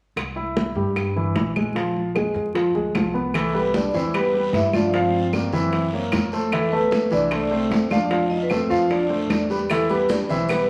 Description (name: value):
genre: Afro-Cuban jazz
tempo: 151 BPM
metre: 4/4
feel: straight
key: C major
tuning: A4 = 442 Hz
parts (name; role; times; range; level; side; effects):
- upright bass; bass; 0.2-10.7 s; Bb1 to G2; -34 LUFS; equal; none
- bongos; percussion; 0.2-10.7 s; none; -36 LUFS; equal; none
- claves; percussion; 0.2-10.7 s; none; -35 LUFS; equal; none
- congas; percussion; 0.2-10.7 s; none; -30 LUFS; equal; none
- warm grand piano; accompaniment; 0.4-10.7 s; E3 to F5; -25 LUFS; equal; none
- vibraphone with medium hard mallets; melody; 3.4-10.7 s; A4 to E5; -27 LUFS; equal; none
- warm trombone; second line; 3.4-10.7 s; A3 to E4; -34 LUFS; equal; none
- guiro; percussion; 3.4-10.7 s; none; -41 LUFS; equal; none
- maracas; percussion; 9.7-10.7 s; none; -45 LUFS; equal; none
room: wet large studio reverb, RT60 1.2 s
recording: vinyl crackle, faint mains hum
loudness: -22 LUFS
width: mono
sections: 0.2-3.3 A section; 3.3-10.7 B section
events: none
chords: 0.2 C; 1.8 Bb7sus2; 3.3 Cmaj7; 4.9 Gm7; 5.7 F#7#11; 6.5 Fmaj7; 8.1 F69; 9.7 Em